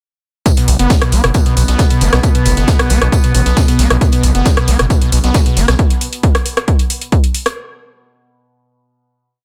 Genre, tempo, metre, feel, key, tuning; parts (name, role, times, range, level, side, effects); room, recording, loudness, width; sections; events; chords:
driving peak-time techno; 135 BPM; 4/4; straight; A4 = 440 Hz
screaming distorted acid line; riff; 0.5-5.7 s; B1 to B3; -20 LUFS; equal; distortion, subtle chorus, sidechain pumping, digital delay
overtone-sweeping drone; drone; 1.1-5.8 s; B2 to B3; -25 LUFS; equal; chorus, built-in reverb, sidechain pumping
electronic kick drum; drums; 0.5-7.2 s; -15 LUFS; equal
open jazz drum kit; drums; 0.5-5.8 s; hi-hat, snare drum, tambourine; -27 LUFS; equal; high-pass filter on hats, high-pass filter on snare, high-pass filter on perc, high-pass filter on room
techno drum kit; drums; 0.5-7.5 s; hi-hat, rim click; -21 LUFS; equal
gritty driven synth bass; bass; 0.7-5.8 s; F#1 to B1; -15 LUFS; equal; sidechain pumping
studio ambience; -13 LUFS; mono
0.5-7.6 drop
drop 0.5-7.6
0.5 B5